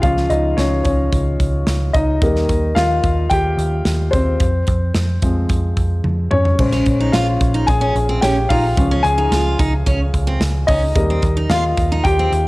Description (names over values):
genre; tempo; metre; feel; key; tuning
piano-driven pop; 110 BPM; 4/4; straight; unclear; A4 = 440 Hz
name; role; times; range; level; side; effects
warm baby grand piano; accompaniment; 0.0-12.5 s; Db3 to Ab5; -18 LUFS; left 1 dB; cassette tape
vintage muted picked electric bass; bass; 0.0-12.5 s; Bb1 to F2; -18 LUFS; equal; none
modern studio drum kit; drums; 0.0-12.5 s; crash cymbal, hi-hat, kick drum, snare drum, toms; -21 LUFS; equal; cassette tape
picked steel-string acoustic guitar; riff; 6.7-12.3 s; C4 to F4; -23 LUFS; right 3 dB; cassette tape
room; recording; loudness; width
light reverb, small room ambience; home recording on cassette; -14 LUFS; side -20 dB against mid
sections
0.0-12.5 A section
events
grand piano solo 0.0-12.5; drum fill 6.0-6.6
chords
0.0 Db; 2.2 Eb; 4.4 Fm; 6.6 Bbm7; 8.8 Db; 11.0 Eb